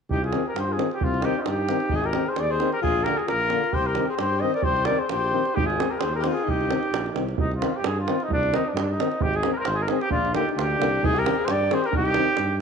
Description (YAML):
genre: balkan folk, Balkan brass band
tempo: 132 BPM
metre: 2/4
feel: swing 55% on 16ths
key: C minor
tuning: A4 = 440 Hz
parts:
  - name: warm trumpet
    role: melody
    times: 0.1-12.6 s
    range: D4 to Eb5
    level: -25 LUFS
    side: equal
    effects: none
  - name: clear alto saxophone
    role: second line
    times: 0.1-7.1, 10.1-12.6 s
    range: C4 to C5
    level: -29 LUFS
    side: left 7 dB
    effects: none
  - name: mellow tuba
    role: bass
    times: 0.1-12.6 s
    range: Ab1 to G2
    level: -29 LUFS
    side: equal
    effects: none
  - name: davul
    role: percussion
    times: 0.1-12.5 s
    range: none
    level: -29 LUFS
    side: right 6 dB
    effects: none
  - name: brilliant trombone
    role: accompaniment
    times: 0.3-12.3 s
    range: D3 to Eb3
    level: -34 LUFS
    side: right 10 dB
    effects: none
  - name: warm euphonium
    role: accompaniment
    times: 0.3-12.3 s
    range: Bb3 to C4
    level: -31 LUFS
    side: left 10 dB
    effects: none
room: moderate echo chamber reverb, RT60 2.1 s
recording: 1960s-style stereo with parts hard left and right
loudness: -21 LUFS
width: side -6 dB against mid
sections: 0.1-7.4 A section; 7.4-12.6 A section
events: none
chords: 0.1 Cm; 1.9 Ab; 2.8 Bb; 3.8 Cm; 5.6 Ab; 6.5 Cm; 9.2 Ab; 10.1 Bb; 11.0 Cm